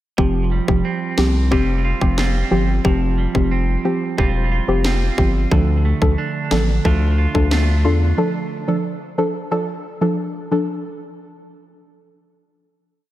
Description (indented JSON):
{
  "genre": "dancehall",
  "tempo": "90 BPM",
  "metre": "4/4",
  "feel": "straight",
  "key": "D minor",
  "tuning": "A4 = 440 Hz",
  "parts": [
    { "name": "soft round pluck", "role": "accompaniment", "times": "0.2-10.7 s", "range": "F3 to A4", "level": "-21 LUFS", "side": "equal", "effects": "chorus" },
    { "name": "clean electric guitar", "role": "arpeggios", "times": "0.2-8.8 s", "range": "D3 to F4", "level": "-24 LUFS", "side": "right 6 dB", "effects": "wide subtle chorus, tape echo" },
    { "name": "round analog bass", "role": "bass", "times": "0.2-8.1 s", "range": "E1 to E2", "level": "-18 LUFS", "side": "equal", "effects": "none" },
    { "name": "island pop drum kit", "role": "drums", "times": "0.2-7.7 s", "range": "kick drum, snare drum", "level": "-21 LUFS", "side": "equal", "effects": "overdrive" }
  ],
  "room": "light reverb, digital ambience",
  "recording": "none",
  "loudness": "-16 LUFS",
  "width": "side -14 dB against mid",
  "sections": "0.2-10.8 verse",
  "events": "none",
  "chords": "0.2 Fsus2; 5.5 Dm"
}